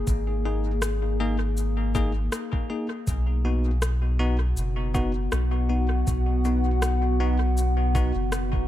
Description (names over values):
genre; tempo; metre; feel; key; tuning
ambient dub; 80 BPM; 4/4; swing 55% on 16ths; unclear; A4 = 440 Hz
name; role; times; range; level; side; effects
warbly tape-like pad; sustained chords; 0.0-8.7 s; B2 to F#5; -30 LUFS; left 2 dB; chorus, built-in reverb
soft dub sub bass; bass; 0.0-8.7 s; F#1 to B1; -24 LUFS; equal; none
electronic cabasa and rim click; drums; 0.1-8.5 s; none; -36 LUFS; left 1 dB; overdrive, studio ambience, dub echo
electronic kick drum; drums; 0.1-8.7 s; none; -27 LUFS; equal; studio ambience
bell-like tine electric piano; stabs; 0.5-8.1 s; A#3 to G#4; -32 LUFS; left 2 dB; fast stereo tremolo, dub echo
room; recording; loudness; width
little or no reverb; echo-heavy mix; -22 LUFS; side -13 dB against mid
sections
0.0-8.7 A section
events
none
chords
0.0 G#sus2; 3.1 B